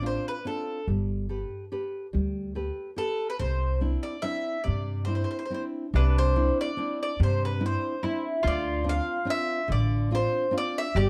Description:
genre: italian folk, Italian serenade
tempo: 143 BPM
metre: 3/4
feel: rubato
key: C major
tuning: A4 = 439 Hz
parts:
  - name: mandolin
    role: melody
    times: 0.0-0.9, 3.0-11.1 s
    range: A4 to F5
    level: -32 LUFS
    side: equal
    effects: plate reverb
  - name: nylon-string guitar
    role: accompaniment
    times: 0.0-11.1 s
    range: C3 to B4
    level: -35 LUFS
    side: equal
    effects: none
  - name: upright bass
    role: bass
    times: 0.0-11.1 s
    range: G1 to G2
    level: -28 LUFS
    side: equal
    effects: none
  - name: mandolin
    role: second line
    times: 6.0-11.1 s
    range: D4 to G4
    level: -35 LUFS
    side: equal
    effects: none
room: light reverb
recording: dark, warm production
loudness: -28 LUFS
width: mono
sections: 0.0-5.9 A section; 5.9-11.1 A section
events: none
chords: 0.0 Dm7; 0.9 Gadd9; 3.4 Cadd9; 8.4 Dm7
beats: 0.02 0.45 | 0.88 1.30 1.73 | 2.14 2.56 2.98 | 3.40 3.82 4.24 | 4.66 5.08 5.51 | 5.95 6.37 6.79 | 7.21 7.62 8.03 | 8.44 8.85 9.27 | 9.69 10.10 10.53 | 10.95

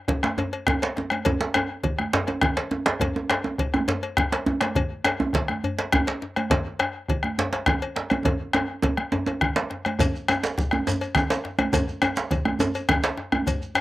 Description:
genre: west african traditional, West African drum ensemble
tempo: 137 BPM (dotted quarters)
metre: 12/8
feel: straight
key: none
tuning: none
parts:
  - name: bombo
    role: percussion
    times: 0.1-13.8 s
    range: none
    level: -25 LUFS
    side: left 2 dB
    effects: none
  - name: congas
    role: percussion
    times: 0.1-13.6 s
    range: none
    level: -30 LUFS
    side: right 3 dB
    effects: none
  - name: cowbell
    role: percussion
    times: 0.1-13.8 s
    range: none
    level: -30 LUFS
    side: left 4 dB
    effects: slapback echo
  - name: djembe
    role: percussion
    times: 0.1-13.8 s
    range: none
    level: -32 LUFS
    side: left 2 dB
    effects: none
  - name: djembe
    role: percussion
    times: 0.1-13.5 s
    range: none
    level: -26 LUFS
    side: right 3 dB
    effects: slapback echo
  - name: shekere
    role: percussion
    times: 10.0-13.8 s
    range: none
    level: -36 LUFS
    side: right 2 dB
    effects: none
room: light reverb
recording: recorded outdoors, with no room sound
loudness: -22 LUFS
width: side -16 dB against mid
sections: 0.0-10.0 A section; 10.0-13.8 B section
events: drum fill 8.3-10.0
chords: none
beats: 0.37 0.81 | 1.25 1.69 2.13 2.57 | 3.00 3.44 3.88 4.32 | 4.76 5.20 5.63 6.07 | 6.51 6.94 7.38 7.82 | 8.25 8.69 9.12 9.56 | 9.99 10.43 10.87 11.30 | 11.73 12.17 12.60 13.04 | 13.47

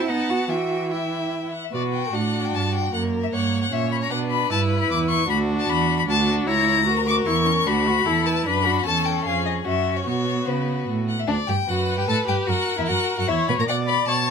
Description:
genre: quick classical-period movement for string quartet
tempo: 151 BPM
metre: 3/4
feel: straight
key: B minor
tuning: A4 = 440 Hz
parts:
  - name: clear violin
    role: melody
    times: 0.0-14.3 s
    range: B4 to D6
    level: -24 LUFS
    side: left 7 dB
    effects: none
  - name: rich violin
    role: second line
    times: 0.0-14.2 s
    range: D4 to F#5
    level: -28 LUFS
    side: left 4 dB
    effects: none
  - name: rich viola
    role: accompaniment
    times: 0.0-14.3 s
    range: E3 to D5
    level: -27 LUFS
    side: right 1 dB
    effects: none
  - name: rich cello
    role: bass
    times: 0.0-14.3 s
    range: C#2 to F#4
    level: -25 LUFS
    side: right 5 dB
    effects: none
room: little or no reverb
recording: close, detailed microphones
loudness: -20 LUFS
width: side -6 dB against mid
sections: 0.0-1.7 A section; 1.7-11.3 B section; 11.3-14.3 B section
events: none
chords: 0.1 B7; 0.5 Em; 1.7 Bm; 2.9 F#; 4.1 Bm; 5.3 D69; 6.5 F#7/C#; 7.7 Bm/D; 8.9 C#dim/E; 9.3 C#/E#; 9.7 F#5; 10.1 B5; 12.5 F#7; 13.7 Bm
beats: 0.08 | 0.49 0.91 1.32 | 1.73 2.13 2.52 | 2.92 3.32 3.71 | 4.11 4.51 4.90 | 5.29 5.68 6.08 | 6.47 6.87 7.27 | 7.66 8.06 8.46 | 8.85 9.25 9.66 | 10.07 10.47 10.88 | 11.29 11.69 12.09 | 12.49 12.89 13.29 | 13.69 14.09

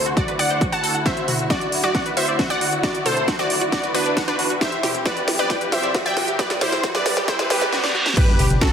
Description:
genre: uplifting trance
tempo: 135 BPM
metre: 4/4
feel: straight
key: unclear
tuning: A4 = 440 Hz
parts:
  - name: wide unison pluck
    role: melody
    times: 0.0-8.7 s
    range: D4 to A5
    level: -22 LUFS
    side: equal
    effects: sidechain pumping, dub echo
  - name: dark studio string section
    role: sustained chords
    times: 0.0-8.7 s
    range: C2 to G4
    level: -30 LUFS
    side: equal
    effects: sidechain pumping
  - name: riser, reverse cymbal and sub drop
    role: sound effects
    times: 0.8-8.7 s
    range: none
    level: -30 LUFS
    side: right 1 dB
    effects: none
  - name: wide unison pluck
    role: arpeggios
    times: 0.1-8.7 s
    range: F#4 to G5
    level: -27 LUFS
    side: equal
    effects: phaser, cassette tape, sidechain pumping, dub echo
  - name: techno drum kit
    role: drums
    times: 0.1-8.7 s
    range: crash cymbal, hi-hat, snare drum, toms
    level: -24 LUFS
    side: equal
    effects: overdrive, small room ambience
  - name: electronic kick drum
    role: drums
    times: 0.2-8.7 s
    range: none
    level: -21 LUFS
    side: equal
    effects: overdrive, small room ambience
  - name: supersaw stab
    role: second line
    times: 8.2-8.7 s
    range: A4 to B4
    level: -28 LUFS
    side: right 1 dB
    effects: sidechain pumping
  - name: plucky analog bass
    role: bass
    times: 8.3-8.6 s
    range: G1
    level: -21 LUFS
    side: equal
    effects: sidechain pumping
room: wet digital room reverb, RT60 1.1 s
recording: dense, heavily limited modern master, high-pass filter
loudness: -18 LUFS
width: side -8 dB against mid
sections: 0.0-8.2 A section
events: build-up 0.0-8.2; drum fill 1.1-7.7, 7.7-8.2; reverse cymbal 7.3-8.2; impact 8.2-8.7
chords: 0.0 Dadd9; 4.6 C; 8.2 G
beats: 0.17 0.61 | 1.06 1.50 1.95 2.39 | 2.84 3.28 3.73 4.17 | 4.61 5.06 5.50 5.95 | 6.39 6.84 7.28 7.72 | 8.17 8.61

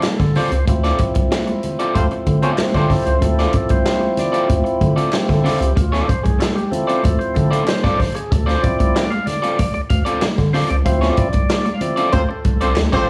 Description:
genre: funk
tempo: 94 BPM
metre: 4/4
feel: straight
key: D minor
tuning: A4 = 440 Hz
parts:
  - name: electric guitar at the edge of break-up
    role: accompaniment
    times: 0.0-13.1 s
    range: C4 to D5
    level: -25 LUFS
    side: equal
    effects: none
  - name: percussive tonewheel organ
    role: stabs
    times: 0.0-12.9 s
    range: F3 to F5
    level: -24 LUFS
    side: equal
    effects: slow rotary speaker
  - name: swinging big-band drum kit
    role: drums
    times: 0.0-13.1 s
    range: hi-hat, kick drum, snare drum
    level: -23 LUFS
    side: equal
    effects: none
  - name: group handclap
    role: percussion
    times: 0.0-12.9 s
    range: none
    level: -35 LUFS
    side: equal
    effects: none
  - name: round analog bass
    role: bass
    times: 0.2-13.1 s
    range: A1 to D3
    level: -20 LUFS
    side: equal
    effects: none
  - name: congas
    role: percussion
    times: 0.4-13.1 s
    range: none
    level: -29 LUFS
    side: equal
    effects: none
  - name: mellow horn section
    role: second line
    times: 1.9-3.2, 12.1-13.1 s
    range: C4 to C5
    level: -25 LUFS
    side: equal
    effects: none
room: light reverb, small room ambience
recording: none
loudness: -17 LUFS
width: mono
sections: 0.0-13.1 A section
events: tonewheel organ solo 0.0-13.1; band accent 0.7-3.2, 10.9-13.1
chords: 0.0 Dm7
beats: 0.04 | 0.68 1.31 1.95 2.59 | 3.23 3.86 4.50 5.14 | 5.77 6.41 7.04 7.68 | 8.32 8.95 9.59 10.22 | 10.86 11.50 12.13 12.77

